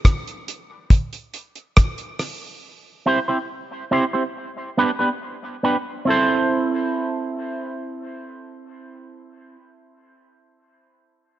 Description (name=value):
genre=dub reggae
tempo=70 BPM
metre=4/4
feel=straight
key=A minor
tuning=A4 = 442 Hz
part: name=damped 70s drum kit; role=drums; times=0.0-2.4 s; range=hi-hat, kick drum, rim click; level=-16 LUFS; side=equal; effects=none
part: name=electric guitar with an envelope filter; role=accompaniment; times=3.1-9.6 s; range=B3 to C5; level=-21 LUFS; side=right 2 dB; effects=analog chorus, dub echo
room=light reverb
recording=nothing above 7.7 kHz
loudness=-19 LUFS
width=side -13 dB against mid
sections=0.0-6.1 A section; 6.1-9.5 B section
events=break 0.0-2.6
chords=0.0 N.C.; 2.6 C; 4.3 G; 6.1 Am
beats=0.05 0.91 1.77 | 2.62 3.48 4.34 5.20 | 6.06 6.92 7.77 8.63